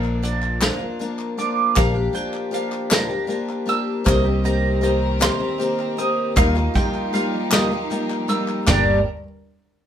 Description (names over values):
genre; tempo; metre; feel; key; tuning
indie folk with a building arrangement; 52 BPM (dotted quarters); 6/8; straight; G minor; A4 = 442 Hz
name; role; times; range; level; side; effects
picked twelve-string acoustic guitar; accompaniment; 0.0-9.0 s; G2 to G4; -23 LUFS; left 2 dB; none
mandolin; arpeggios; 0.0-9.0 s; D5 to E6; -26 LUFS; right 5 dB; none
fingered electric bass; bass; 0.0-9.0 s; G1 to Eb2; -22 LUFS; equal; none
group handclap; percussion; 0.0-9.0 s; none; -27 LUFS; left 3 dB; none
vintage brush drum kit; drums; 0.2-8.9 s; hi-hat, kick drum, snare drum, splash cymbal, toms; -22 LUFS; equal; none
dark upright piano; accompaniment; 4.1-9.0 s; C2 to Eb5; -31 LUFS; equal; none
warm chamber string section; sustained chords; 4.1-9.0 s; Eb3 to Bb4; -30 LUFS; right 2 dB; none
room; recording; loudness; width
wet small room reverb, RT60 0.5 s; band playing live in one room; -18 LUFS; side -9 dB against mid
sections
0.0-8.7 A section; 8.7-9.9 B section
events
none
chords
0.0 Bb; 1.8 Gm7/Bb; 4.1 Cm7; 6.4 Ebadd9; 8.7 Gm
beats
0.62 | 1.77 2.92 | 4.07 5.22 | 6.37 7.52 | 8.67